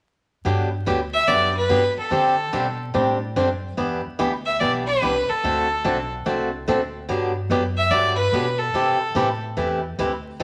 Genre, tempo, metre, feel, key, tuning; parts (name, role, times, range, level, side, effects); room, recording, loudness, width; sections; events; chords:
country, western swing; 145 BPM; 4/4; swing 66% on 8ths; G major; A4 = 440 Hz
picked swing-style acoustic guitar; accompaniment; 0.4-10.4 s; C3 to A4; -25 LUFS; equal
upright bass; bass; 0.4-10.4 s; B1 to D3; -31 LUFS; equal
bright fiddle; melody; 1.1-9.4 s; A4 to E5; -23 LUFS; equal
moderate large studio reverb, RT60 0.9 s; vinyl crackle; -22 LUFS; mono
0.5-10.4 A section
0.5 Gmaj7; 2.1 D7sus4; 3.8 Em7; 5.4 D7; 7.1 Gmaj7; 8.7 C6